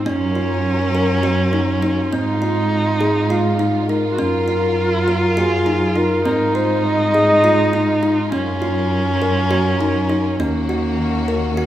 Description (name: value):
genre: contemporary instrumental, chamber music in an uneven meter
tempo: 203 BPM (eighths)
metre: 7/8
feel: straight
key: unclear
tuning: A4 = 441 Hz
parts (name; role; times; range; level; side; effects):
- warm viola; second line; 0.0-11.7 s; Bb3 to Gb4; -20 LUFS; equal; none
- clear studio string section; sustained chords; 0.0-11.7 s; Eb3 to Bb4; -26 LUFS; left 1 dB; none
- clear double bass; bass; 0.0-11.7 s; Eb2 to Ab2; -22 LUFS; right 2 dB; none
- kalimba; arpeggios; 0.1-11.7 s; C4 to Bb4; -22 LUFS; left 1 dB; none
- breathy flugelhorn; melody; 3.3-8.0 s; F4 to Eb5; -19 LUFS; left 1 dB; none
room: moderate recital hall reverb, RT60 1.5 s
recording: none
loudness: -15 LUFS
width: side -12 dB against mid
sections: 0.0-11.7 A section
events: none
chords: 0.1 Gbmaj7; 2.1 Fm7/Ab; 4.2 Gbmaj7; 6.3 Fm7/Ab; 8.3 Gbmaj7; 10.4 Ebm7